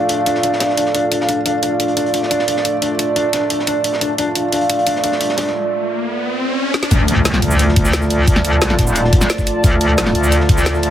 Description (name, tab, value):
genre	dark technical drum and bass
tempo	176 BPM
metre	4/4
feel	straight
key	D minor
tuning	A4 = 440 Hz
part	dark analog pad	sustained chords	0.0-10.9 s	A3 to F5	-21 LUFS	equal	chorus, sidechain pumping
part	warm brass ensemble	stabs	0.0-10.1 s	A3 to D5	-21 LUFS	right 6 dB	dub echo
part	warbly tape-like pad	texture	0.0-10.9 s	F4 to A5	-24 LUFS	equal	chorus, built-in reverb, sidechain pumping
part	felt-muted upright piano	arpeggios	0.1-5.5 s	D4	-22 LUFS	left 5 dB	sidechain pumping, dub echo
part	crunchy breakbeat drum kit	drums	0.1-10.9 s	hi-hat, snare drum	-28 LUFS	left 1 dB	high-pass filter on hats, high-pass filter on snare, high-pass filter on room
part	drum and bass drum kit	drums	0.1-10.9 s	cabasa, hi-hat, snare drum	-19 LUFS	equal	none
part	riser and impact	sound effects	5.2-8.3 s	none	-22 LUFS	left 1 dB	none
part	metallic wobble bass	bass	6.9-10.9 s	Eb1 to D2	-15 LUFS	equal	chorus, tube saturation, sidechain pumping
part	electronic kick drum	drums	6.9-10.6 s	none	-14 LUFS	equal	none
room	light reverb, small room ambience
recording	heavily compressed radio sound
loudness	-14 LUFS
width	side -11 dB against mid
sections	0.0-6.9 A section; 6.9-10.9 B section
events	riser 5.2-6.9; break 5.5-6.9; drum fill 6.7; drop 6.9-10.9; impact 6.9-8.3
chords	0.0 Dm